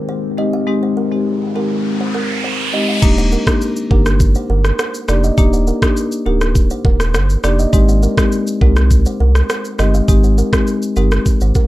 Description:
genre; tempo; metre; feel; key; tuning
afrobeats; 102 BPM; 4/4; straight; Eb major; A4 = 440 Hz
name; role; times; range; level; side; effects
deep dark ambient pad; sustained chords; 0.0-3.0 s; Eb3 to G4; -26 LUFS; left 2 dB; chorus, built-in reverb, sidechain pumping
kalimba; riff; 0.1-11.6 s; Bb4 to F5; -24 LUFS; right 5 dB; analog delay
marimba with medium mallets; accompaniment; 0.4-11.1 s; Ab3 to G4; -18 LUFS; left 2 dB; none
riser; sound effects; 1.2-3.0 s; none; -22 LUFS; right 2 dB; none
warm sub bass; bass; 3.0-11.5 s; D1 to C2; -14 LUFS; equal; none
afro-pop drum kit; drums; 3.0-11.7 s; crash cymbal, kick drum, rim click, shaker; -15 LUFS; equal; vintage 12-bit sampler grit
room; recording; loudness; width
little or no reverb; dry, gritty hardware recording; -12 LUFS; side -16 dB against mid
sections
0.0-3.0 A section; 3.0-11.7 B section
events
riser 1.2-3.0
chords
0.0 Abmaj7; 3.0 Ebmaj7; 7.7 Abmaj7

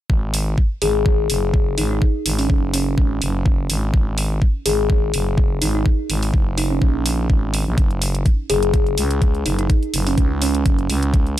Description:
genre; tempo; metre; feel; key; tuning
bass house; 125 BPM; 4/4; swing 54% on 16ths; unclear; A4 = 440 Hz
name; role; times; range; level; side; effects
growling FM bass; bass; 0.1-11.4 s; F#1 to C#2; -21 LUFS; equal; overdrive, sidechain pumping
electronic kick drum; drums; 0.1-11.2 s; none; -16 LUFS; equal; none
electronic hi-hat; drums; 0.3-11.4 s; none; -25 LUFS; right 1 dB; none
kalimba; melody; 0.8-10.9 s; C#4 to G#4; -23 LUFS; left 1 dB; tape echo
room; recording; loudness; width
digital ambience; none; -16 LUFS; side -13 dB against mid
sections
0.1-11.4 A section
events
none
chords
0.1 F#sus2; 7.8 F#5

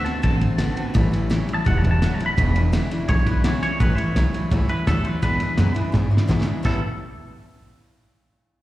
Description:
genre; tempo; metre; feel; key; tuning
rockabilly; 168 BPM; 4/4; straight; A mixolydian; A4 = 440 Hz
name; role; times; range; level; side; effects
twangy electric guitar; melody; 0.0-6.8 s; A4 to B5; -28 LUFS; equal; lush chorus, plate reverb, slapback echo, tape echo
picked steel-string acoustic guitar; accompaniment; 0.0-6.8 s; E2 to F#4; -26 LUFS; left 2 dB; slapback echo
electric guitar through a small old amp; riff; 0.0-6.8 s; E2 to B4; -30 LUFS; right 3 dB; slapback echo
upright bass; bass; 0.1-6.8 s; E1 to B2; -22 LUFS; equal; none
cloth-damped thuddy drum kit; drums; 0.1-6.7 s; crash cymbal, kick drum, ride cymbal, snare drum; -24 LUFS; equal; none
room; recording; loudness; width
little or no reverb; live gig heard through the venue's PA, recital hall reverb; -18 LUFS; side -16 dB against mid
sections
0.0-3.8 A section; 3.8-6.7 B section; 6.7-8.1 C section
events
drum fill 5.9-6.7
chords
0.0 D7; 1.0 A7; 2.4 E7; 3.8 A7; 5.2 E7; 6.7 A9

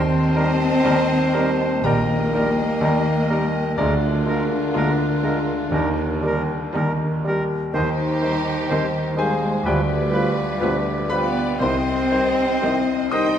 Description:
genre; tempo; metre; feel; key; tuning
classical, romantic movement for piano and orchestra; 61 BPM; 4/4; rubato; C minor from 7.7 s; A4 = 441 Hz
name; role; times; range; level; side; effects
warm baby grand piano; melody; 0.0-13.4 s; C2 to Eb6; -22 LUFS; equal; none
clear clarinet; second line; 0.0-13.4 s; D4 to Eb5; -27 LUFS; equal; none
dark symphonic violin section; second line; 0.0-13.4 s; F4 to G5; -31 LUFS; left 2 dB; none
mellow hollow silver concert flute; second line; 0.0-13.4 s; Bb4 to C6; -30 LUFS; left 2 dB; none
warm oboe; second line; 0.0-13.3 s; Bb4 to C5; -31 LUFS; right 1 dB; none
mellow bassoon; accompaniment; 0.0-13.3 s; Eb3 to Ab3; -30 LUFS; right 2 dB; none
mellow French horn section; sustained chords; 0.0-13.4 s; D3 to Eb4; -27 LUFS; left 5 dB; none
dark studio double bass section; bass; 0.0-12.4 s; Bb1 to Eb2; -29 LUFS; right 3 dB; none
mellow tuba; bass; 0.0-12.4 s; Bb1 to Eb2; -29 LUFS; right 4 dB; none
warm studio cello section; bass; 0.0-13.4 s; D3 to Eb4; -29 LUFS; right 3 dB; none
warm studio violin section; melody; 0.9-13.4 s; Eb4 to F4; -35 LUFS; left 6 dB; none
warm studio viola section; accompaniment; 0.9-13.4 s; G3 to C4; -33 LUFS; right 1 dB; none
room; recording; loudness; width
wet scoring stage reverb, RT60 2.1 s; faint mains hum; -18 LUFS; side -9 dB against mid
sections
0.0-13.4 A section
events
none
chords
0.0 Eb; 3.8 Bb7/D; 5.7 Eb; 7.7 Cm/Eb; 9.7 G7/D; 11.6 Cm

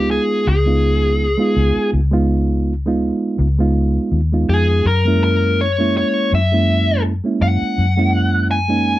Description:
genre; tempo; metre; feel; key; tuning
straight-eighth soul blues; 82 BPM; 4/4; swing 55% on 16ths; Db mixolydian; A4 = 441 Hz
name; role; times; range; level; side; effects
dark smooth lead guitar; melody; 0.0-9.0 s; Ab4 to Ab5; -18 LUFS; left 2 dB; overdrive
reed electric piano; accompaniment; 0.0-9.0 s; Ab3 to F4; -19 LUFS; right 3 dB; none
vintage muted fingered electric bass; bass; 0.0-8.9 s; Db2 to Gb2; -17 LUFS; left 1 dB; none
room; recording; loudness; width
little or no reverb; dry, close 1970s-style studio recording; -14 LUFS; side -15 dB against mid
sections
0.0-9.0 A section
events
none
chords
0.0 Db9; 4.9 Gb9

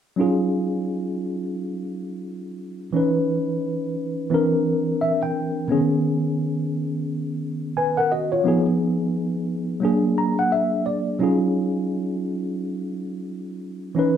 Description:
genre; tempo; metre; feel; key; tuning
hip hop; 87 BPM; 4/4; swing 60% on 16ths; Eb minor; A4 = 440 Hz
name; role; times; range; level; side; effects
tine electric piano; solo; 0.2-14.2 s; C#3 to Bb5; -21 LUFS; equal; overdrive, fast stereo tremolo
room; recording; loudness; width
moderate large studio reverb, RT60 1.0 s; band playing live in one room; -21 LUFS; side -9 dB against mid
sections
0.2-11.2 A section; 11.2-14.2 B section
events
tine electric piano fill 4.7-5.7, 9.8-11.2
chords
0.2 Ebm11; 2.9 Dbm9; 4.3 C9; 5.7 B69; 8.5 Fm7b5; 9.8 Bbaug7; 11.2 Ebm11

